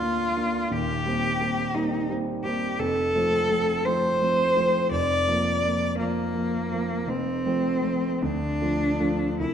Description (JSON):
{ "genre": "classical, romantic duo for cello and grand piano", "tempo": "49-59 BPM (dotted quarters)", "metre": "6/8", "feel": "rubato", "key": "F major", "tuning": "A4 = 440 Hz", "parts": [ { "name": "rich cello", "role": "melody", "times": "0.0-9.5 s", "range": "Bb3 to D5", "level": "-24 LUFS", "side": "equal", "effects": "none" }, { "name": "warm grand piano", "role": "accompaniment", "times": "0.0-9.5 s", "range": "Eb1 to F4", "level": "-27 LUFS", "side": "right 1 dB", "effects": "none" } ], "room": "wet recital hall reverb, RT60 1.5 s", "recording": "dark, warm production", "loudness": "-22 LUFS", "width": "side -8 dB against mid", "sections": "0.0-9.5 A section", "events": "none", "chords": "0.0 Bb/D; 0.7 Cm7/Eb; 2.8 F; 4.9 Bb/F; 7.1 F; 8.2 Dm" }